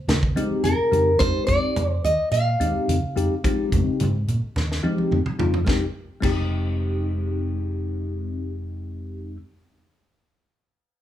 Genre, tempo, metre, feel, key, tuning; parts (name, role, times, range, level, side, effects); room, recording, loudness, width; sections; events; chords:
electric jazz fusion; 107 BPM; 4/4; straight; F dorian; A4 = 440 Hz
nylon-string guitar; melody; 0.0-5.1 s; Bb4 to F5; -22 LUFS; right 1 dB
fingered electric bass; bass; 0.1-9.4 s; F1 to F3; -26 LUFS; equal
tight funk drum kit; drums; 0.1-6.4 s; crash cymbal, hi-hat, kick drum, snare drum, toms; -25 LUFS; equal
congas; percussion; 0.1-6.4 s; -29 LUFS; right 2 dB
bell-like tine electric piano; accompaniment; 0.4-9.4 s; Ab3 to G4; -26 LUFS; left 3 dB; phaser
moderate large studio reverb, RT60 1.0 s; band playing live in one room; -20 LUFS; side -11 dB against mid
0.0-5.7 A section; 5.7-7.9 B section
drum fill 4.6-5.7
0.0 Fm9